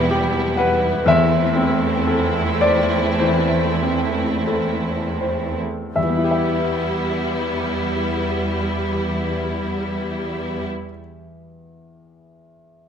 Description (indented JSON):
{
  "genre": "classical, romantic movement for piano and orchestra",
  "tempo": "39-64 BPM",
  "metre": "4/4",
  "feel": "rubato",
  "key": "E minor",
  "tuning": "A4 = 440 Hz",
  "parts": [
    { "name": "bright grand piano", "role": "melody", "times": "0.0-12.9 s", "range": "E2 to A5", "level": "-20 LUFS", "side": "left 2 dB", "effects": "none" },
    { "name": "warm symphonic violin section", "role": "melody", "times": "0.0-10.7 s", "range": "E4", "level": "-29 LUFS", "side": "left 1 dB", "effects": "none" },
    { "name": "rich symphonic violin section", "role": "second line", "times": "0.0-10.6 s", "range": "B3 to C4", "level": "-28 LUFS", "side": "left 1 dB", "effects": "none" },
    { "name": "rich symphonic viola section", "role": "accompaniment", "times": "0.0-10.6 s", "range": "G3 to A3", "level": "-26 LUFS", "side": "right 1 dB", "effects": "none" },
    { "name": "warm symphonic cello section", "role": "bass", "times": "0.0-10.6 s", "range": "E2", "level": "-26 LUFS", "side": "right 3 dB", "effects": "none" }
  ],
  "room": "moderate recital hall reverb, RT60 1.3 s",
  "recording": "close, detailed microphones",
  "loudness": "-18 LUFS",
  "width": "side -8 dB against mid",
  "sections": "0.0-6.0 A section; 6.0-11.7 B section",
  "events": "slowing down 0.0-6.0",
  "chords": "0.0 Em; 1.0 Am/E; 6.0 Em"
}